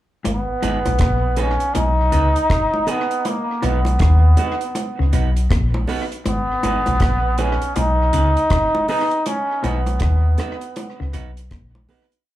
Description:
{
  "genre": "roots reggae",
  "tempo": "80 BPM",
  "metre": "4/4",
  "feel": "swing 63% on 16ths",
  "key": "B major",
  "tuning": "A4 = 444 Hz",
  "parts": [
    { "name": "electric guitar at the edge of break-up", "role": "riff", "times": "0.2-11.7 s", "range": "G#2 to D#3", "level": "-27 LUFS", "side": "left 3 dB", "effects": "slapback echo" },
    { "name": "bongos", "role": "percussion", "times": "0.2-12.1 s", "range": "none", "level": "-28 LUFS", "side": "right 1 dB", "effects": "slapback echo" },
    { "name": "brilliant trombone", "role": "melody", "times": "0.3-11.1 s", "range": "A#3 to D#4", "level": "-20 LUFS", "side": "equal", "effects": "tape echo, plate reverb, slapback echo" },
    { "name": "warm sub bass", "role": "bass", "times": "0.3-11.9 s", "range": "G#1 to D#2", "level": "-18 LUFS", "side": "equal", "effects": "none" },
    { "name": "deep reggae drum kit", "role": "drums", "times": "0.3-12.3 s", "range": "hi-hat, kick drum, rim click", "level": "-23 LUFS", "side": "equal", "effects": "tape echo" },
    { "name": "semi-hollow electric guitar", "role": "accompaniment", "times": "0.6-12.1 s", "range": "B3 to B4", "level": "-29 LUFS", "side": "right 6 dB", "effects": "tape echo, plate reverb, slapback echo" }
  ],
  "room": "light reverb",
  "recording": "live gig heard through the venue's PA, club ambience",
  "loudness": "-16 LUFS",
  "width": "side -14 dB against mid",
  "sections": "0.3-12.3 verse",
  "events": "fade-out 9.3-12.3",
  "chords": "0.3 G#m; 3.3 B; 6.3 G#m; 9.3 B",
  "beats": "| 0.25 1.00 1.75 2.50 | 3.25 4.00 4.75 5.51 | 6.26 7.01 7.76 8.51 | 9.26 10.01 10.76 11.52"
}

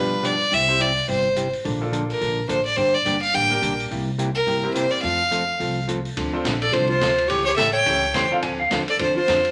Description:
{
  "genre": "country, western swing",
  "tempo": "212 BPM",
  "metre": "4/4",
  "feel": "swing 59% on 8ths",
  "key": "unclear",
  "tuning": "A4 = 441 Hz",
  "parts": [
    { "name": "clear fiddle", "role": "melody", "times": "0.0-9.5 s", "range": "Bb4 to G5", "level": "-23 LUFS", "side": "equal", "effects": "none" },
    { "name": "bright upright piano", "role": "accompaniment", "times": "0.0-8.4 s", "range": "Bb3 to C#5", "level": "-32 LUFS", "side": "equal", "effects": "none" },
    { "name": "hollow-body jazz guitar", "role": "accompaniment", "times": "0.0-9.4 s", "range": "B2 to B4", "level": "-30 LUFS", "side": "equal", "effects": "none" },
    { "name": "upright bass", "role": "bass", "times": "0.0-9.5 s", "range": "G1 to G2", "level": "-32 LUFS", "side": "equal", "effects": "none" },
    { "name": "vintage drum kit", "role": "drums", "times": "0.2-9.5 s", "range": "hi-hat, ride cymbal, snare drum", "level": "-34 LUFS", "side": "equal", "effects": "none" },
    { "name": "breathy clarinet", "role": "second line", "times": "6.6-9.5 s", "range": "F4 to C#5", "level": "-26 LUFS", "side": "equal", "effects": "none" },
    { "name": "clean lap steel guitar", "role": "second line", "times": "8.1-8.8 s", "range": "C5 to Ab5", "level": "-25 LUFS", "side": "equal", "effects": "none" }
  ],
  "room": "wet studio reverb, RT60 0.7 s",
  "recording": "none",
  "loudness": "-21 LUFS",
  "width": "mono",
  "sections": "0.0-6.2 A section; 6.2-9.5 B section",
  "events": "none",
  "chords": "0.0 G7; 0.5 C; 1.6 Bbmaj7; 2.8 Gm; 3.9 C7; 5.0 F; 6.2 Dm7; 7.3 A7; 8.4 Dm7",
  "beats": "0.23 | 0.52 0.80 1.08 1.36 | 1.64 1.93 2.21 2.49 | 2.77 3.06 3.34 3.62 | 3.90 4.18 4.47 4.75 | 5.03 5.32 5.60 5.88 | 6.16 6.45 6.73 7.01 | 7.29 7.58 7.86 8.14 | 8.43 8.71 8.99 9.28"
}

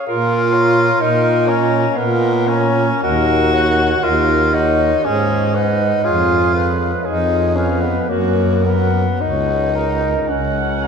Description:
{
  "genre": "classical, lyrical piece for single-reed quartet",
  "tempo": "53-65 BPM",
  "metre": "3/4",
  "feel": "rubato",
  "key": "F# major",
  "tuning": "A4 = 440 Hz",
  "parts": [
    { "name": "dark clarinet", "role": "melody", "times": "0.0-10.9 s", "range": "C#5 to A#5", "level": "-25 LUFS", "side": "left 5 dB", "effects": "none" },
    { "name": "bright alto saxophone", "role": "second line", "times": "0.0-10.9 s", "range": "F#4 to F#5", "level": "-23 LUFS", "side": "right 4 dB", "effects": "none" },
    { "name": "warm tenor saxophone", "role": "accompaniment", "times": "0.1-10.9 s", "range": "A#3 to F#4", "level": "-17 LUFS", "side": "left 1 dB", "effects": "none" },
    { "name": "warm baritone saxophone", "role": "bass", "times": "0.1-10.9 s", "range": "C#2 to A#2", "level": "-18 LUFS", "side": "right 1 dB", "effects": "none" }
  ],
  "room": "wet church reverb, RT60 3.4 s",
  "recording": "recorded in a church or concert hall",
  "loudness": "-14 LUFS",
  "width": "side -6 dB against mid",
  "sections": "0.0-10.9 A section",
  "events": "none",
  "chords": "0.1 A#m; 3.0 D#m7; 5.0 G#m7; 6.0 C#7/E#; 8.1 F#; 9.2 F#/C#",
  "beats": "| 0.09 1.01 1.97 | 3.04 4.04 5.05 | 6.04 7.05 8.09 | 9.21 10.29"
}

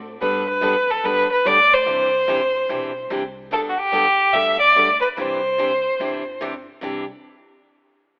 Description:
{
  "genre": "country, western swing",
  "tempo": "145 BPM",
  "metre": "4/4",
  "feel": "swing 64% on 8ths",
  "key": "C major",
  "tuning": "A4 = 442 Hz",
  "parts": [
    { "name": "upright bass", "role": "bass", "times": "0.0-7.1 s", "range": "G1 to A2", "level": "-43 LUFS", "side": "equal", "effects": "none" },
    { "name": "clear fiddle", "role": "melody", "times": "0.2-6.4 s", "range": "F#4 to E5", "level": "-19 LUFS", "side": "equal", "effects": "none" },
    { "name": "picked steel-string acoustic guitar", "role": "accompaniment", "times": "0.2-7.0 s", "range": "C3 to A4", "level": "-30 LUFS", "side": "equal", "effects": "none" }
  ],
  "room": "moderate echo chamber reverb, RT60 2.2 s",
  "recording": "telephone sound",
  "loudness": "-19 LUFS",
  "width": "mono",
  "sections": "0.0-3.5 A section; 3.5-6.8 B section; 6.8-8.2 C section",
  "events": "none",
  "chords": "0.2 Gadd9; 1.9 Cadd9; 3.5 Gadd9; 5.2 Cadd9",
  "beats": "| 0.21 0.63 1.04 1.45 | 1.86 2.28 2.69 3.10 | 3.52 3.93 4.35 4.76 | 5.17 5.59 6.00 6.42 | 6.83"
}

